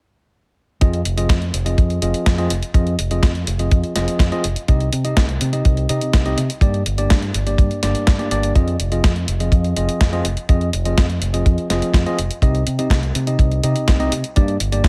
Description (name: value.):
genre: italo disco.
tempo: 124 BPM.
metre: 4/4.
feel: straight.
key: F minor.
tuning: A4 = 441 Hz.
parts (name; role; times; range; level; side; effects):
tine electric piano; stabs; 0.8-14.9 s; G2 to Eb5; -25 LUFS; equal; low-pass filter, digital delay.
fingered electric bass with an envelope filter; bass; 0.8-14.9 s; F1 to C3; -23 LUFS; equal; none.
clean 12-bit digital drum machine; drums; 0.8-14.9 s; hi-hat, snare drum; -26 LUFS; equal; overdrive, gated reverb.
kick drum; drums; 0.8-14.9 s; none; -17 LUFS; equal; none.
room: little or no reverb.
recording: none.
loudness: -18 LUFS.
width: mono.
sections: 0.8-14.9 A section.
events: none.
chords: 0.8 Fm7; 4.7 Cm; 6.6 Gm; 8.6 Fm7; 12.4 Cm; 14.4 Gm.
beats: | 0.81 1.30 1.78 2.26 | 2.75 3.23 3.72 4.20 | 4.68 5.17 5.65 6.13 | 6.62 7.10 7.59 8.07 | 8.55 9.04 9.52 10.01 | 10.49 10.97 11.46 11.94 | 12.43 12.91 13.39 13.88 | 14.36 14.85.